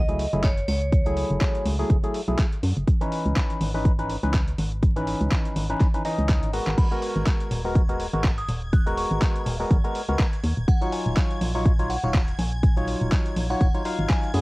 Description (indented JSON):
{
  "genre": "deep house",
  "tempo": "123 BPM",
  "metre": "4/4",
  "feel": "swing 56% on 16ths",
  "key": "unclear",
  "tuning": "A4 = 441 Hz",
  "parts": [
    { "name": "vibraphone with hard mallets", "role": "melody", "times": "0.0-1.6 s", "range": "C#5 to D#5", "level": "-30 LUFS", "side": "right 1 dB", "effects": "cassette tape, analog delay" },
    { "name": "organ-like FM bass", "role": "bass", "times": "0.0-14.4 s", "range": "D#1 to F#2", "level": "-26 LUFS", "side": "equal", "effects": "tube saturation" },
    { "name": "percussive organ stab", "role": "stabs", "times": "0.1-14.4 s", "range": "E3 to E#5", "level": "-28 LUFS", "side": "equal", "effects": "chorus, sidechain pumping, analog delay" },
    { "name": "dusty soul sampler-style drum kit", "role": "drums", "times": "0.1-14.4 s", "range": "crash cymbal, handclaps, hi-hat", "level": "-34 LUFS", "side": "equal", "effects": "overdrive" },
    { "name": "electronic kick drum", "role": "drums", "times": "0.4-14.2 s", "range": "none", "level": "-21 LUFS", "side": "equal", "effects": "none" },
    { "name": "glassy synth bell", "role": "melody", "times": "6.8-14.4 s", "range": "F#5 to F#6", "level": "-34 LUFS", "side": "equal", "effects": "chorus, cassette tape, analog delay" },
    { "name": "string machine, violins", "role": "texture", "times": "6.8-14.4 s", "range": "G#6", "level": "-42 LUFS", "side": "equal", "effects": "ensemble chorus, sidechain pumping" }
  ],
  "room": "light reverb",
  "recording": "home recording on cassette, vinyl crackle",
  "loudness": "-21 LUFS",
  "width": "side -22 dB against mid",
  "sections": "0.0-14.4 A section",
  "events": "drum fill 6.3-6.8",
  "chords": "0.0 F#m9; 2.9 C#m9; 6.8 G#m9; 10.4 D#m9",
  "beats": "0.44 | 0.93 1.41 1.90 2.39 | 2.88 3.36 3.85 4.34 | 4.83 5.32 5.80 6.29 | 6.78 7.27 7.75 8.24 | 8.73 9.22 9.71 10.19 | 10.68 11.17 11.66 12.14 | 12.63 13.12 13.61 14.10"
}